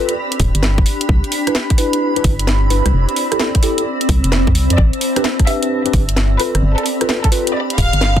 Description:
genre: UK garage, two-step garage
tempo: 130 BPM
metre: 4/4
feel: swing 66% on 16ths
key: C major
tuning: A4 = 442 Hz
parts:
  - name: mellow tine electric piano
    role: stabs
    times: 0.0-7.5 s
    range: C4 to B4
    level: -20 LUFS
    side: equal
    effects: medium stereo tremolo, dub echo
  - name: granular cloud pad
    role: texture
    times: 0.0-8.2 s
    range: C4 to B5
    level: -21 LUFS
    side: equal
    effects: built-in reverb, sidechain pumping
  - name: garage drum kit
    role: drums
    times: 0.1-8.1 s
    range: hi-hat, rim click, snare drum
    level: -21 LUFS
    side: equal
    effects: small room ambience
  - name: organ-like FM bass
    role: bass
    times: 0.4-8.2 s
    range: D1 to F2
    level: -15 LUFS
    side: equal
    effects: none
  - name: electronic kick drum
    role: drums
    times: 0.4-8.2 s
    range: none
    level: -15 LUFS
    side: equal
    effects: small room ambience
  - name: warm studio violin section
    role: melody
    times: 4.8-8.2 s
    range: A4 to F5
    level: -22 LUFS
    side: equal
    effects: dub echo
room: light reverb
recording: dense, heavily limited modern master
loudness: -13 LUFS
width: side -10 dB against mid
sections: 0.0-8.2 A section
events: none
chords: 0.0 G7; 0.9 Cmaj9; 2.9 Fmaj7; 4.8 Am11; 6.4 G7

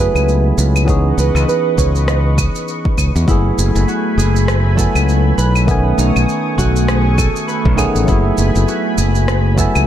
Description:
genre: sunset chillout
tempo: 100 BPM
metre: 4/4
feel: swing 58% on 16ths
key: F# dorian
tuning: A4 = 439 Hz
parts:
  - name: nylon-string guitar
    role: melody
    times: 0.0-2.9 s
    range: B4 to D#5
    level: -20 LUFS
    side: right 7 dB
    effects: tape echo
  - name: tine electric piano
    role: accompaniment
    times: 0.0-9.9 s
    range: D#3 to G#5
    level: -19 LUFS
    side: equal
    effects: auto-pan, tape echo
  - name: lush unison pad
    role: sustained chords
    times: 0.0-9.9 s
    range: A3 to D#6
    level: -23 LUFS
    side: equal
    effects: chorus
  - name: modern bright fingered electric bass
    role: bass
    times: 0.0-9.9 s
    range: F#1 to E2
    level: -14 LUFS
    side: equal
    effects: tube saturation
  - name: electronic claves, shaker and rim click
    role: drums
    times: 0.2-9.9 s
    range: none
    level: -23 LUFS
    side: equal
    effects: none
  - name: electronic kick drum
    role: drums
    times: 0.9-9.7 s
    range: none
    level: -17 LUFS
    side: equal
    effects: overdrive
  - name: concert harp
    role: arpeggios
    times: 3.3-9.9 s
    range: D#4 to B4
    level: -24 LUFS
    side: equal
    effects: tape echo
room: light reverb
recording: dark, warm production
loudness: -12 LUFS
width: side -11 dB against mid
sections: 0.0-9.9 A section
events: none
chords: 0.0 F#m11; 0.9 C#m9; 3.3 F#m11; 5.7 B13; 8.1 F#m11

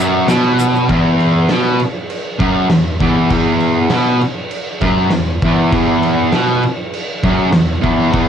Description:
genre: garage rock duo or trio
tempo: 99 BPM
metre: 4/4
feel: straight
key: unclear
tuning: A4 = 439 Hz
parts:
  - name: fuzz guitar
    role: riff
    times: 0.0-8.3 s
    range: E2 to B2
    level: -12 LUFS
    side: equal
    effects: distortion, cassette tape
  - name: oversized low-tuned drum kit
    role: drums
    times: 0.3-8.3 s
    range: crash cymbal, kick drum, snare drum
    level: -19 LUFS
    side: equal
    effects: cassette tape
  - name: tube shaker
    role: percussion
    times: 0.3-0.8 s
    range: none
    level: -30 LUFS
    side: left 6 dB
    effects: none
room: light reverb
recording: home recording on cassette, lossy compression artefacts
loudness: -12 LUFS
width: side -8 dB against mid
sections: 0.9-8.3 A section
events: none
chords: none

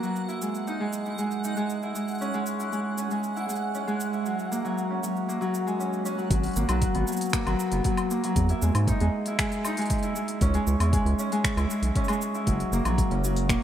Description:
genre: folktronica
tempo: 117 BPM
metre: 4/4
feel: straight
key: G# minor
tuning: A4 = 440 Hz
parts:
  - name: Celtic harp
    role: arpeggios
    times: 0.0-13.6 s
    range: F#3 to E4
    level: -27 LUFS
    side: equal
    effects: low-pass filter, analog delay
  - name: organic electronic drum kit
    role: drums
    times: 0.0-13.6 s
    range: cabasa, finger snaps, hi-hat, woodblock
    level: -33 LUFS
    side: left 1 dB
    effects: none
  - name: backwards swelling texture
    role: texture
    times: 0.0-6.3 s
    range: F#5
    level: -38 LUFS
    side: right 2 dB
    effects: built-in reverb
  - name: round analog bass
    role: bass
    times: 6.3-13.6 s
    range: E1 to G#2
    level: -25 LUFS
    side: equal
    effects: none
  - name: electronic kick drum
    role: drums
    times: 6.3-13.6 s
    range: none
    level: -28 LUFS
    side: equal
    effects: none
room: moderate cathedral reverb, RT60 5.8 s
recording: dreamy mix soaked in reverb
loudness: -24 LUFS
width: side -10 dB against mid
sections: 0.0-6.3 A section; 6.3-13.6 B section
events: filter sweep on harp 0.0-6.3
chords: 0.2 Emaj7; 2.2 C#m; 4.3 F#add9; 6.3 G#m9; 8.4 Emaj7; 10.4 C#m; 12.5 F#7

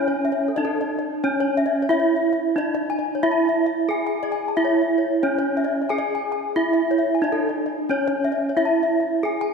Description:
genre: gamelan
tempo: 90 BPM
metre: 4/4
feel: straight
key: C# pelog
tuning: A4 = 441 Hz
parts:
  - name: gamelan-type bronze metallophone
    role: melody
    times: 0.0-9.5 s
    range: C#4 to G#4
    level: -21 LUFS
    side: right 3 dB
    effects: none
  - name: gamelan-type bronze metallophone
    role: arpeggios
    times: 0.1-9.5 s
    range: A4 to A5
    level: -24 LUFS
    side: left 5 dB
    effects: none
room: wet concert hall reverb, RT60 2.5 s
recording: none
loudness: -19 LUFS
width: side -5 dB against mid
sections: 0.0-9.5 A section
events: none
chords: none

